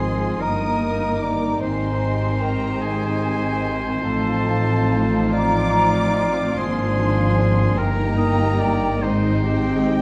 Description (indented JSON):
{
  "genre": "classical, slow romantic movement for symphony orchestra",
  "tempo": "49 BPM (dotted quarters)",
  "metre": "6/8",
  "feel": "rubato",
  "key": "Eb major",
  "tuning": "A4 = 441 Hz",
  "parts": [
    { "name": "warm studio violin section", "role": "melody", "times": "0.0-10.0 s", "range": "Eb5 to Eb6", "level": "-33 LUFS", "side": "equal", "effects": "none" },
    { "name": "clear oboe", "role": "second line", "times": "0.0-10.0 s", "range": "F4 to Eb5", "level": "-32 LUFS", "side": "equal", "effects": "none" },
    { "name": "mellow hollow flute section", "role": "second line", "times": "0.0-10.0 s", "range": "C5 to Bb5", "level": "-30 LUFS", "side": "equal", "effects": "none" },
    { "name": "rich studio violin section", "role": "second line", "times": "0.0-10.0 s", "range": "D4 to Bb4", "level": "-34 LUFS", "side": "equal", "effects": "none" },
    { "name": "warm clarinet", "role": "second line", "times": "0.0-10.0 s", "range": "Eb4 to Eb5", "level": "-30 LUFS", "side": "equal", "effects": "none" },
    { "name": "rich studio viola section", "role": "accompaniment", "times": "0.0-10.0 s", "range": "Eb3 to C4", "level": "-29 LUFS", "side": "equal", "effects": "none" },
    { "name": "clear French horn section", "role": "sustained chords", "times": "0.0-10.0 s", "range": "Ab3 to F4", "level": "-31 LUFS", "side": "equal", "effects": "none" },
    { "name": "concert harp", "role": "arpeggios", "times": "0.0-10.0 s", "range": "G2 to Eb5", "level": "-32 LUFS", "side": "equal", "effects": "none" },
    { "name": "rich studio double bass section", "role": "bass", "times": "0.0-10.0 s", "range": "G1 to A1", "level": "-28 LUFS", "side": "equal", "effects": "none" },
    { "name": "warm studio cello section", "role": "bass", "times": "0.0-10.0 s", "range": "G2 to A2", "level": "-28 LUFS", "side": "equal", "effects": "none" }
  ],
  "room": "moderate scoring stage reverb, RT60 1.5 s",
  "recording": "dark, warm production, vinyl crackle",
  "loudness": "-20 LUFS",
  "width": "mono",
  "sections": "0.0-10.0 A section",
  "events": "none",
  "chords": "0.4 Eb/G; 1.6 Abmaj7; 4.0 F7/A; 6.6 Bb7/Ab; 7.8 Eb/G; 9.0 Ab",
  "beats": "0.41 | 1.62 2.81 | 4.03 5.34 | 6.58 7.79 | 9.03"
}